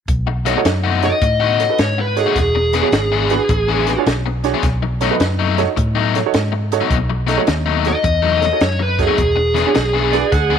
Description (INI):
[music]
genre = electric blues shuffle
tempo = 106 BPM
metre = 4/4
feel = swing 66% on 8ths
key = B mixolydian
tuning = A4 = 440 Hz
[part]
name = vintage muted fingered electric bass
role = bass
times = 0.1-10.6 s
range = E1 to A2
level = -20 LUFS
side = equal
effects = none
[part]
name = compact cocktail drum kit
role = drums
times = 0.1-10.5 s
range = hi-hat, kick drum, snare drum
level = -22 LUFS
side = equal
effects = none
[part]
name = biting overdriven guitar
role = riff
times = 0.3-10.6 s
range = B2 to G#4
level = -21 LUFS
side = left 12 dB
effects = spring reverb
[part]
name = clear upright piano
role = accompaniment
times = 0.5-10.2 s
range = D4 to D#5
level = -23 LUFS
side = right 13 dB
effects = none
[part]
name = dark smooth lead guitar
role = melody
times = 1.1-4.0, 7.9-10.6 s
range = G#4 to D#5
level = -18 LUFS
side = equal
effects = overdrive
[part]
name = overdriven slide guitar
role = second line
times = 10.1-10.6 s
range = D5 to F#5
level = -20 LUFS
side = right 14 dB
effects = none
[sound]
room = light reverb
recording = 1960s-style stereo with parts hard left and right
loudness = -14 LUFS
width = side -8 dB against mid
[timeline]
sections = 0.1-10.6 A section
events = none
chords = 0.1 B7; 2.4 E7; 4.6 B7; 9.2 E7